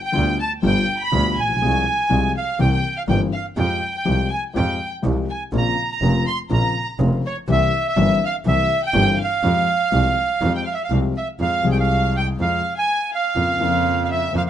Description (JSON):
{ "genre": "tango", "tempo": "123 BPM", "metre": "4/4", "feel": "rubato", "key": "F harmonic minor", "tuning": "A4 = 439 Hz", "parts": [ { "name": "warm studio violin section", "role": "second line", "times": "0.0-14.4 s", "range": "Db5 to C6", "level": "-28 LUFS", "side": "left 2 dB", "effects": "none" }, { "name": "bandoneon", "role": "melody", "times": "0.1-14.5 s", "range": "Db5 to C6", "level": "-22 LUFS", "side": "right 3 dB", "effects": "none" }, { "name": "dark grand piano", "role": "accompaniment", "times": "0.1-14.5 s", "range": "F1 to Ab4", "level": "-23 LUFS", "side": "left 5 dB", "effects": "none" }, { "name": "clear double bass", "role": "bass", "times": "0.2-14.5 s", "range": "F1 to F2", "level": "-22 LUFS", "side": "right 2 dB", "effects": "none" } ], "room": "studio ambience", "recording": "rough home demo mix, nothing above 11.0 kHz", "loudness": "-17 LUFS", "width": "side -10 dB against mid", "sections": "0.0-11.4 A section; 11.4-14.5 A section", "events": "none", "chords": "0.0 G7; 1.6 Fm/C; 2.6 C7; 3.6 Fmadd9; 5.5 Bbmadd9; 7.5 C7; 9.4 Fmadd9; 11.4 Fm; 13.4 Bbmadd9/F" }